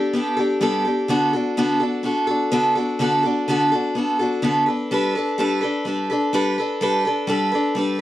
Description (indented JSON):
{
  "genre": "rock",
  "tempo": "126 BPM",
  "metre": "4/4",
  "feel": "straight",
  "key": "unclear",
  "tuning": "A4 = 436 Hz",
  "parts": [
    { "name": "picked steel-string acoustic guitar", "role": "solo", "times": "0.0-8.0 s", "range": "D3 to B4", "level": "-18 LUFS", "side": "equal", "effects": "none" }
  ],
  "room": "little or no reverb",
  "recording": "dry, close 1970s-style studio recording",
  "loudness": "-18 LUFS",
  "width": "side -14 dB against mid",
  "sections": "0.0-8.0 A section",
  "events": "none",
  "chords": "0.0 Gadd9; 1.1 D6; 4.7 Gadd9"
}